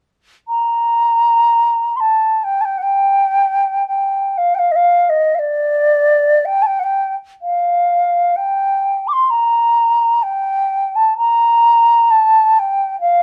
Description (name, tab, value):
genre	classical, free, expressive piece for unaccompanied flute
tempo	52-67 BPM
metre	4/4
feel	rubato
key	G minor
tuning	A4 = 440 Hz
part	mellow wooden flute	solo	0.5-13.2 s	D5 to D6	-15 LUFS	equal	none
room	light reverb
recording	close, detailed microphones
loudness	-15 LUFS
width	mono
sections	0.5-13.2 A section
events	none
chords	none